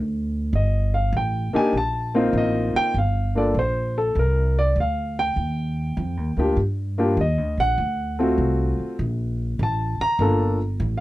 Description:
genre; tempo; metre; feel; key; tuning
jazz piano trio; 99 BPM; 4/4; swing 68% on 8ths; G minor; A4 = 440 Hz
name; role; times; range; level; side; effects
upright bass; bass; 0.0-11.0 s; G1 to G2; -23 LUFS; equal; none
warm grand piano; melody; 0.6-11.0 s; A3 to Bb5; -22 LUFS; equal; none
room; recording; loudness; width
little or no reverb; dry, close 1970s-style studio recording; -20 LUFS; side -16 dB against mid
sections
0.0-11.0 A section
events
grand piano solo 0.0-11.0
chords
0.0 Gm9; 5.4 Ebmaj7; 7.8 D7#9; 10.2 Gm9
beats
| 0.53 1.14 1.74 2.35 | 2.95 3.56 4.16 4.76 | 5.37 5.97 6.58 7.18 | 7.78 8.39 8.99 9.59 | 10.20 10.80

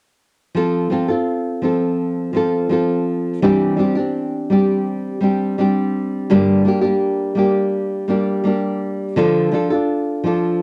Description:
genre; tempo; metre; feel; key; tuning
pop; 84 BPM; 4/4; straight; F major; A4 = 438 Hz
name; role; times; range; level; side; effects
nylon-string guitar; accompaniment; 0.5-10.6 s; G2 to A4; -18 LUFS; equal; cassette tape
room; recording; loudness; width
wet studio reverb, RT60 0.6 s; home recording on cassette; -18 LUFS; mono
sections
0.6-10.6 A section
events
none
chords
0.6 F; 3.4 Cadd9/E; 6.3 Gm; 9.2 Dm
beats
| 0.56 1.27 1.99 2.71 | 3.42 4.14 4.86 5.58 | 6.30 7.01 7.73 8.45 | 9.17 9.89 10.61

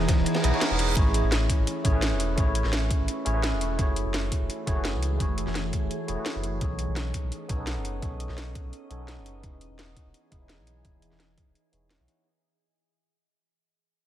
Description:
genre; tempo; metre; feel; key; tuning
liquid drum and bass; 170 BPM; 4/4; straight; unclear; A4 = 438 Hz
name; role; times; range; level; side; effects
barky tine electric piano; accompaniment; 0.0-12.3 s; A3 to D#5; -32 LUFS; equal; wide subtle chorus, low-pass filter, analog delay
glassy FM pad; sustained chords; 0.0-12.2 s; E3 to D#5; -34 LUFS; right 2 dB; ensemble chorus, built-in reverb
warm sub bass; bass; 0.0-12.1 s; E1 to C#2; -29 LUFS; equal; tube saturation
crunchy breakbeat drum kit; drums; 0.0-0.9 s; ride cymbal, snare drum; -36 LUFS; equal; high-pass filter on cymbals, high-pass filter on hats, high-pass filter on snare, high-pass filter on room
drum and bass drum kit; drums; 0.1-12.2 s; hi-hat, snare drum; -32 LUFS; equal; none
electronic kick drum; drums; 0.1-11.4 s; none; -26 LUFS; equal; none
reverse cymbal; sound effects; 0.4-1.0 s; none; -33 LUFS; right 4 dB; none
room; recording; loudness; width
light reverb, studio ambience; none; -24 LUFS; side -11 dB against mid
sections
0.0-12.3 A section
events
filter sweep on tine electric piano 0.0-12.3; reverse cymbal 0.4-1.0; fade-out 1.0-12.3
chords
0.0 Emaj7; 1.0 Amaj7; 3.8 F#m9; 6.6 B13; 9.4 Emaj7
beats
0.26 0.61 | 0.96 1.32 1.67 2.02 | 2.38 2.73 3.08 3.44 | 3.79 4.14 4.49 4.85 | 5.20 5.55 5.91 6.26 | 6.61 6.96 7.32 7.67 | 8.02 8.38 8.73 9.08 | 9.44 9.79 10.14 10.49 | 10.85 11.20 11.55 11.91

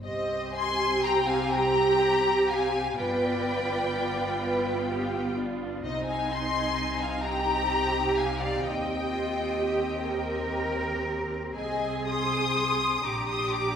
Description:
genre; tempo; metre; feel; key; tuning
classical, slow romantic movement for string orchestra; 42 BPM (dotted quarters); 6/8; uneven beats, rubato; C minor; A4 = 442 Hz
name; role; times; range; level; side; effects
warm studio violin section; melody; 0.0-13.8 s; Eb5 to Eb6; -30 LUFS; left 4 dB; none
warm studio violin section; second line; 0.0-13.8 s; C5 to C6; -34 LUFS; left 1 dB; none
dark studio viola section; accompaniment; 0.0-13.8 s; B3 to Ab4; -31 LUFS; right 1 dB; none
rich studio double bass section; bass; 0.0-13.8 s; G1 to Eb2; -36 LUFS; right 2 dB; none
warm studio cello section; bass; 1.5-13.8 s; D4 to B4; -31 LUFS; right 2 dB; none
room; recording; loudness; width
wet recital hall reverb, RT60 1.5 s; recorded in a church or concert hall; -25 LUFS; side -8 dB against mid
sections
0.0-13.8 A section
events
none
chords
0.0 C5; 3.0 G7; 5.8 Cm; 8.6 Cm/Eb; 11.5 Ab/C; 13.0 Gm/Bb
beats
| 0.03 1.53 | 2.97 4.41 | 5.84 7.22 | 8.63 10.04 | 11.54 13.04

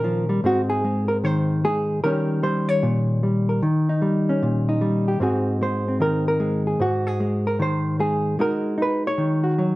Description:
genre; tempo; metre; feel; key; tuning
solo jazz; 151 BPM; 4/4; swing 65% on 8ths; unclear; A4 = 440 Hz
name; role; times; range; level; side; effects
hollow-body jazz guitar; solo; 0.0-9.8 s; Ab2 to Db5; -19 LUFS; equal; none
room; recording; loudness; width
moderate large studio reverb, RT60 1.1 s; dark, warm production; -19 LUFS; side -18 dB against mid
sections
0.0-9.8 A section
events
none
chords
0.4 Ab; 2.0 Eb7; 5.2 Ab7; 8.4 Ab5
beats
0.03 | 0.43 0.83 1.23 1.62 | 2.02 2.42 2.82 3.22 | 3.62 4.01 4.41 4.81 | 5.21 5.60 6.00 6.40 | 6.80 7.19 7.59 7.99 | 8.39 8.78 9.18 9.58

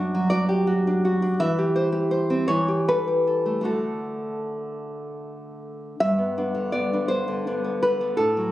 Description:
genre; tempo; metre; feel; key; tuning
romantic piece for solo classical guitar; 50-57 BPM (dotted quarters); 6/8; rubato; G major; A4 = 440 Hz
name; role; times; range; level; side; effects
nylon-string guitar; solo; 0.0-8.5 s; F#2 to F#5; -22 LUFS; equal; none
room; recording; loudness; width
light reverb; recorded on a phone in the room, club reverb, compression; -21 LUFS; side -14 dB against mid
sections
0.0-6.0 A section; 6.0-8.5 B section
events
none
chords
0.0 D/F#; 1.4 C/E; 2.5 A5/E; 3.6 D; 6.0 G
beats
0.31 | 1.38 2.48 | 3.64 4.82 | 6.00 7.09 | 8.19

